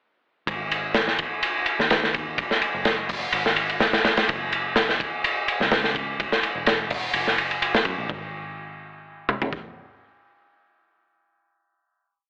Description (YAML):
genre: breakbeat, breaks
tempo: 126 BPM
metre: 4/4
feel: swing 54% on 16ths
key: unclear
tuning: A4 = 439 Hz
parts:
  - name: picked electric bass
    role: bass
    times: 0.5-9.5 s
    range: E1 to F#2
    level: -40 LUFS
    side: equal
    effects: tube saturation
  - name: crunchy breakbeat drum kit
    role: drums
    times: 0.5-9.6 s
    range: hi-hat, kick drum, ride cymbal, snare drum, toms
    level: -24 LUFS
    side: equal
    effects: none
room: little or no reverb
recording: telephone sound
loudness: -24 LUFS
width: mono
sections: 0.5-8.1 drop; 8.1-11.9 final chord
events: drop 0.5-8.1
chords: none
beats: | 0.48 0.95 1.43 1.90 | 2.38 2.86 3.33 3.81 | 4.29 4.76 5.24 5.71 | 6.19 6.67 7.14 7.62 | 8.10 8.57 9.05 9.52